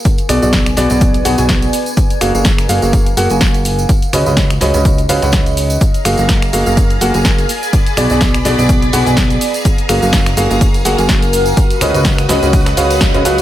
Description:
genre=piano house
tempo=125 BPM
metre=4/4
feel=swing 55% on 16ths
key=F# major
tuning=A4 = 445 Hz
part: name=tambourine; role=percussion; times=0.0-13.4 s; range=none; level=-29 LUFS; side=right 3 dB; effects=none
part: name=deep dark ambient pad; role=texture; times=0.0-13.4 s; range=F#4 to B5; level=-22 LUFS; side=equal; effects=chorus, built-in reverb, sidechain pumping
part: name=breakbeat sampler-style drum kit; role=drums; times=0.1-13.4 s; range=hi-hat, snare drum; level=-29 LUFS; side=right 1 dB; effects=none
part: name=electronic kick drum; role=drums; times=0.1-13.1 s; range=none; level=-13 LUFS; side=equal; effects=none
part: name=punchy analog drum machine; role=drums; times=0.1-13.4 s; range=finger snaps, hi-hat, shaker, snare drum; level=-19 LUFS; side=equal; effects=none
part: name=warm grand piano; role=riff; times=0.3-13.4 s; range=B2 to G#5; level=-16 LUFS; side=right 1 dB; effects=sidechain pumping, tape echo
part: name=fat analog bass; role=bass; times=0.3-13.4 s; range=F#1 to C#2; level=-17 LUFS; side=equal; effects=sidechain pumping
part: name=string machine, violins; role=sustained chords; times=5.8-13.4 s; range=F#4 to D#6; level=-22 LUFS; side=equal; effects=ensemble chorus, sidechain pumping
room=little or no reverb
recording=none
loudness=-10 LUFS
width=side -13 dB against mid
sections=0.0-13.4 A section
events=band accent 13.0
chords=0.0 Bm6; 1.7 F#maj9; 3.9 C#9sus4; 5.8 F#maj9; 7.5 Bm6; 9.4 F#maj9; 11.6 C#9sus4

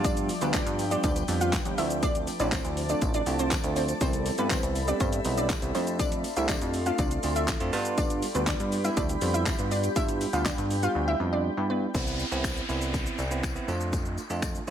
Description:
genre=dance-pop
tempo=121 BPM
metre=4/4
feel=straight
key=C major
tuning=A4 = 444 Hz
part: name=glassy wavetable pluck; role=melody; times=0.0-11.8 s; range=B3 to F5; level=-31 LUFS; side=equal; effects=chorus, ping-pong delay
part: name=bell-like tine electric piano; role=accompaniment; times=0.0-14.7 s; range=G3 to G4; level=-32 LUFS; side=right 5 dB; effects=sidechain pumping
part: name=glassy FM pad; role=sustained chords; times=0.0-11.9 s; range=F3 to C6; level=-35 LUFS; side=left 2 dB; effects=ensemble chorus, built-in reverb, sidechain pumping
part: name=chorused synth bass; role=bass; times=0.0-14.7 s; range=A1 to G2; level=-30 LUFS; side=equal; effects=sidechain pumping
part: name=pop drum kit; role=drums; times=0.0-14.7 s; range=finger snaps, handclaps, hi-hat, kick drum, shaker, snare drum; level=-30 LUFS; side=equal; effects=none
part: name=tambourine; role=percussion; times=0.0-14.7 s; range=none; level=-44 LUFS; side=left 8 dB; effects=none
part: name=downlifter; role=sound effects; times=11.9-14.7 s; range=none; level=-35 LUFS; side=left 1 dB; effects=none
room=light reverb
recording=none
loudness=-25 LUFS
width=side -9 dB against mid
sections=0.0-11.9 A section; 11.9-14.7 B section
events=drop 0.0-11.9; drums muted 11.0-11.9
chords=0.0 G7; 1.8 Dm7; 4.0 Cmaj7; 5.7 F6; 7.7 G7; 11.9 Cmaj7; 13.7 F6

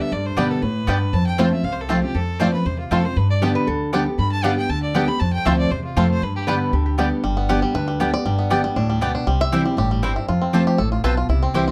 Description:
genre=bluegrass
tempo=236 BPM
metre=4/4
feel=straight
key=G mixolydian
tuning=A4 = 441 Hz
part: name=clear fiddle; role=melody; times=0.0-6.4 s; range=F4 to B5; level=-30 LUFS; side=equal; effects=none
part: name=picked steel-string acoustic guitar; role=accompaniment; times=0.0-11.7 s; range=F2 to G4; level=-23 LUFS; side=equal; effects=none
part: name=upright bass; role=bass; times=0.1-11.7 s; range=G1 to B2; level=-26 LUFS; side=equal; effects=none
part: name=bluegrass banjo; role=melody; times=0.4-11.7 s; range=G3 to E5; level=-27 LUFS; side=equal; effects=none
part: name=mandolin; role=stabs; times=0.4-11.6 s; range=B3 to A5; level=-28 LUFS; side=equal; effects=none
part: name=lap resonator guitar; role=second line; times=3.4-4.1, 6.5-7.2 s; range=G4 to B4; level=-30 LUFS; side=equal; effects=none
room=moderate small room reverb, RT60 0.5 s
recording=dark, warm production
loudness=-20 LUFS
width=mono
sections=0.0-7.2 A section; 7.2-11.7 B section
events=five-string banjo solo 7.2-11.7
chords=0.0 G; 1.1 F; 3.2 G; 5.2 F; 6.2 G; 9.3 C; 10.3 F

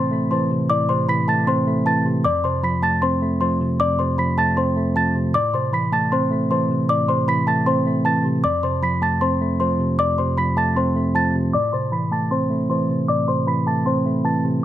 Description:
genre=hip hop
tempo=155 BPM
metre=4/4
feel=half-time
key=A minor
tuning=A4 = 441 Hz
part: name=small celesta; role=melody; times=0.0-14.4 s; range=C5 to B6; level=-21 LUFS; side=equal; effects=low-pass filter, tape echo
part: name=mellow tine electric piano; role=accompaniment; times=0.0-14.6 s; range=F2 to C4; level=-20 LUFS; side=equal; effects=low-pass filter
room=light reverb, small room ambience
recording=none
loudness=-18 LUFS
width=side -12 dB against mid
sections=0.0-11.5 A section; 11.5-14.6 B section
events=none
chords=0.0 Am; 2.2 F; 5.3 Am; 8.4 F; 11.5 Am

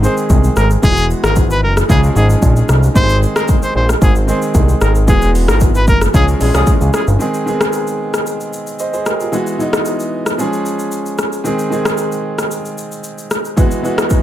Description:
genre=afrobeats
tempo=113 BPM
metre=4/4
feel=straight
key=Ab major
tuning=A4 = 441 Hz
part: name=clear trumpet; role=melody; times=0.0-7.1 s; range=Ab4 to C5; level=-19 LUFS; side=left 1 dB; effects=ping-pong delay
part: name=clear concert grand piano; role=accompaniment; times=0.0-14.2 s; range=Eb3 to Eb5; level=-18 LUFS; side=right 1 dB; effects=none
part: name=fat analog bass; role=bass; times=0.0-7.2 s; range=E1 to Db2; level=-13 LUFS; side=equal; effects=none
part: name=deep house drum kit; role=drums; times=0.0-14.2 s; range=hi-hat, kick drum, rim click, shaker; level=-16 LUFS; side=equal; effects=overdrive
part: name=mellow horn section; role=second line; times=6.1-6.7 s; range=F3 to Ab4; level=-21 LUFS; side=left 3 dB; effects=none
room=small room ambience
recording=none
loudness=-12 LUFS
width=side -12 dB against mid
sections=0.0-7.2 A section; 7.2-14.2 B section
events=band accent 5.1-7.2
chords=0.0 Ab; 0.8 Eadd9; 1.9 Db; 3.0 Ab; 5.1 Eadd9; 6.1 Db; 7.2 Ab; 9.3 Eadd9; 10.4 Db; 11.5 Ab; 13.6 Eadd9

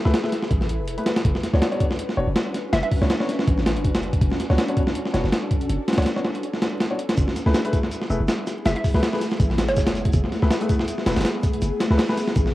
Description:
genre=drum and bass, jungle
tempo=162 BPM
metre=4/4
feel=swing 55% on 16ths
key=F# minor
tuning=A4 = 441 Hz
part: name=ethereal airy pad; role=sustained chords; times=0.0-12.5 s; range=A3 to B4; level=-29 LUFS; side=left 1 dB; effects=ensemble chorus, built-in reverb, cassette tape
part: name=dark grand piano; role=stabs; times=0.1-12.2 s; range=A3 to C#5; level=-28 LUFS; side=left 2 dB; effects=vintage 12-bit sampler grit, cassette tape, dub echo
part: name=warm 808-style bass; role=bass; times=0.1-12.5 s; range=E1 to C#2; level=-23 LUFS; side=equal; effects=none
part: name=breakbeat sampler-style drum kit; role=drums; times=0.1-12.5 s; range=hi-hat, kick drum, snare drum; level=-22 LUFS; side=equal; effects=none
part: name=hollow square pluck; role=melody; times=2.7-2.9, 8.7-10.2 s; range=C#5 to E5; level=-29 LUFS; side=right 1 dB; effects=chorus, dub echo
part: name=damped 70s drum kit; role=drums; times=7.2-12.5 s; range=hi-hat, shaker, snare drum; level=-38 LUFS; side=right 1 dB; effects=high-pass filter on hats, high-pass filter on snare, high-pass filter on perc, high-pass filter on room
room=light reverb, small room ambience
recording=home recording on cassette, vinyl crackle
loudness=-20 LUFS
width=side -16 dB against mid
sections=0.0-12.5 A section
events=none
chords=0.0 F#m11 (rootless); 1.2 Bmadd9; 7.2 F#m11

